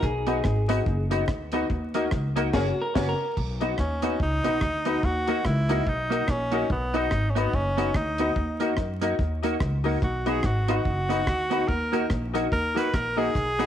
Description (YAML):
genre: ska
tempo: 144 BPM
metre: 4/4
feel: swing 59% on 8ths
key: B major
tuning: A4 = 443 Hz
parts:
  - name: clean electric guitar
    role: melody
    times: 0.0-3.3 s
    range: F#4 to B4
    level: -31 LUFS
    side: left 1 dB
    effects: warbly pitch drift
  - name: upright bass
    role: bass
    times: 0.0-13.7 s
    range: F#1 to F#2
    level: -28 LUFS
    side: equal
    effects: none
  - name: deep reggae drum kit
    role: drums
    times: 0.0-13.7 s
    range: crash cymbal, hi-hat, kick drum, rim click, snare drum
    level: -29 LUFS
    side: equal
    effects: none
  - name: clean electric guitar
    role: accompaniment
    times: 0.3-13.7 s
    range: A#3 to F#4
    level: -31 LUFS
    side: right 9 dB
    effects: analog chorus
  - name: clear upright piano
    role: stabs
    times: 0.3-13.7 s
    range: C#4 to D#5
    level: -29 LUFS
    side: left 8 dB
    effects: none
  - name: clear tenor saxophone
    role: melody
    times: 3.8-13.7 s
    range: B3 to B4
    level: -28 LUFS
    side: equal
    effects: none
room: light reverb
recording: 1960s-style stereo with parts hard left and right, vinyl crackle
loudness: -23 LUFS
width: side -10 dB against mid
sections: 0.0-3.4 A section; 3.4-13.7 A section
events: clean electric guitar solo 0.0-3.4; band accent 2.5-3.4; tenor saxophone solo 3.4-13.7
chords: 0.0 B; 1.7 D#m; 2.5 F#; 3.4 B; 5.0 D#m; 6.7 B; 8.4 D#m; 10.0 B; 11.7 D#m